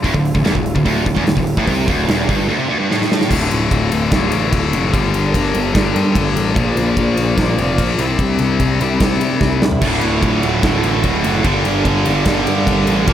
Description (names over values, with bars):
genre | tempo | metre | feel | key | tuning
heavy metal | 147 BPM | 4/4 | straight | D minor | A4 = 439 Hz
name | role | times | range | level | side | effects
bright studio string section | sustained chords | 0.0-13.1 s | C3 to D5 | -26 LUFS | right 3 dB | none
scooped high-gain guitar | riff | 0.0-13.1 s | D2 to C4 | -18 LUFS | left 5 dB | distortion
fuzz picked electric bass | bass | 0.0-13.1 s | D1 to C3 | -20 LUFS | equal | overdrive
big rock drum kit | drums | 0.0-13.1 s | crash cymbal, hi-hat, kick drum, ride cymbal, snare drum, toms | -19 LUFS | equal | none
high-gain distorted guitar | riff | 0.1-3.3, 9.8-13.1 s | D2 to Bb3 | -20 LUFS | right 12 dB | distortion
room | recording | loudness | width
studio reverb | none | -13 LUFS | side -10 dB against mid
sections
0.0-3.3 A section; 3.3-13.1 B section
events
drum fill 2.9-3.3, 9.4-9.8; half time 3.3-13.1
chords
0.0 Dm; 4.9 Gm; 6.6 Bb; 8.0 C; 9.8 Dm; 11.4 Gm